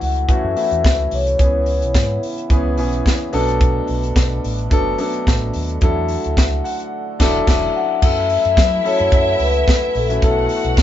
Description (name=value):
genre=disco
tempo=109 BPM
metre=4/4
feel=straight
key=F# minor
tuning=A4 = 440 Hz
part: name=vibraphone with soft mallets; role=melody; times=0.0-2.2, 7.8-10.8 s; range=A4 to F#5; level=-19 LUFS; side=left 4 dB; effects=none
part: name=warm grand piano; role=accompaniment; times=0.0-10.8 s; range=E3 to F#5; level=-22 LUFS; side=left 1 dB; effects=none
part: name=mellow French horn section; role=sustained chords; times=0.0-10.8 s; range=B2 to F#4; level=-28 LUFS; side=right 2 dB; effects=none
part: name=fingered electric bass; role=bass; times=0.0-10.7 s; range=E1 to F#3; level=-22 LUFS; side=right 1 dB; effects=none
part: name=tight funk drum kit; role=drums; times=0.0-10.8 s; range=crash cymbal, hi-hat, kick drum, snare drum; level=-17 LUFS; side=equal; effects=none
part: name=dark symphonic violin section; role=second line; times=8.0-10.8 s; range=E4 to F#5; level=-24 LUFS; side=left 1 dB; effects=none
room=moderate small room reverb, RT60 0.5 s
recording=band playing live in one room, nothing above 7.7 kHz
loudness=-15 LUFS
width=side -11 dB against mid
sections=0.0-8.0 A section; 8.0-10.8 B section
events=band accent 6.9-8.0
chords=0.0 F#m7; 1.4 C#m7; 3.3 Bm7; 5.8 E9sus4; 8.0 F#m7; 10.2 B7sus4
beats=0.29 0.84 | 1.39 1.95 2.50 3.05 | 3.60 4.16 4.71 5.26 | 5.82 6.37 6.92 7.47 | 8.02 8.57 9.12 9.68 | 10.23 10.78